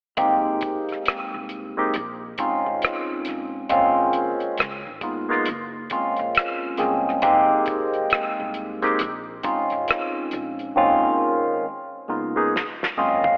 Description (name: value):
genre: R&B, neo-soul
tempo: 68 BPM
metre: 4/4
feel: swing 61% on 16ths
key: F minor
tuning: A4 = 441 Hz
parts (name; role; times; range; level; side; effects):
- barky tine electric piano; accompaniment; 0.2-13.4 s; Gb2 to F5; -24 LUFS; equal; overdrive, phaser
- upright bass; bass; 0.2-10.7 s; F1 to Eb2; -42 LUFS; equal; none
- damped 70s drum kit; drums; 0.2-13.4 s; hi-hat, kick drum, rim click, snare drum, toms; -28 LUFS; equal; none
room: wet lush hall reverb, RT60 2.3 s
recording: dreamy mix soaked in reverb, telephone sound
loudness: -23 LUFS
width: mono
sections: 0.2-13.4 A section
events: tine electric piano fill 12.5-13.4; drum fill 12.5-13.4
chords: 0.2 Fm9; 1.9 Bbm9; 3.7 Eb9sus4; 4.6 Db9; 5.5 Gbmaj7; 7.2 Fm9; 9.0 Bbm9; 10.8 Eb9sus4; 11.6 Db9; 12.5 Gbmaj7